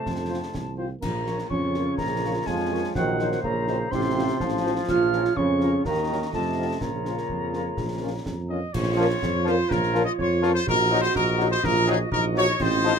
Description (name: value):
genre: military-style march for wind band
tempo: 124 BPM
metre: 2/4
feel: straight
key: Bb minor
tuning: A4 = 440 Hz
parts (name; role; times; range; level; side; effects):
- mellow euphonium; second line; 0.0-13.0 s; Gb3 to Gb4; -28 LUFS; right 4 dB; none
- mellow woodwind section; second line; 0.0-13.0 s; Eb4 to Eb5; -33 LUFS; left 3 dB; none
- wooden piccolo; second line; 0.0-8.5 s; Gb5 to F6; -32 LUFS; left 1 dB; none
- bright trombone section; sustained chords; 0.0-12.9 s; C3 to F4; -29 LUFS; left 2 dB; none
- mellow tuba; bass; 0.1-13.0 s; A1 to F2; -28 LUFS; right 3 dB; none
- concert snare drum, concert bass drum and clash cymbals; drums; 0.1-13.0 s; none; -34 LUFS; equal; none
- bright trumpet section; melody; 0.3-13.0 s; F4 to Eb5; -26 LUFS; left 2 dB; none
- dark French horn section; accompaniment; 0.3-12.9 s; F3 to Bb4; -30 LUFS; left 3 dB; none
room: moderate booth ambience, RT60 0.2 s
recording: minimal, uncompressed stereo recording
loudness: -22 LUFS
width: side -6 dB against mid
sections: 0.0-8.7 A section; 8.7-13.0 B section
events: none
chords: 0.0 F; 1.0 Bbm; 3.0 Cm7b5/Bb; 3.9 F/A; 4.9 Bbm; 5.9 Ebm; 6.3 F7; 6.8 Bbm; 10.7 Cm7b5/Bb